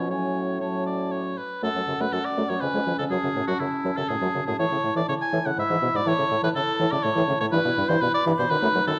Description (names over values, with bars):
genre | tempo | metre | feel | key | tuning
quick classical-period movement for wind quintet | 122 BPM | 3/4 | straight | F# minor | A4 = 440 Hz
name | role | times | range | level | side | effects
clear oboe | second line | 0.0-9.0 s | E4 to G#5 | -28 LUFS | equal | none
mellow French horn | accompaniment | 0.0-8.9 s | G2 to A3 | -31 LUFS | equal | none
warm clarinet | accompaniment | 0.0-9.0 s | C#4 to E4 | -34 LUFS | equal | none
clear bassoon | bass | 0.0-8.9 s | E#2 to B2 | -32 LUFS | equal | none
mellow hollow concert flute | melody | 0.1-9.0 s | F#5 to B5 | -34 LUFS | equal | none
room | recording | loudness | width
moderate recital hall reverb, RT60 1.6 s | none | -25 LUFS | mono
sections
0.0-1.6 A section; 1.6-9.0 A section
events
none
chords
0.1 F#m/A; 1.6 F#m; 2.6 C#/E#; 3.1 F#m; 4.6 A; 5.6 E/G#; 6.1 A; 7.5 Em/G; 8.5 B7/F#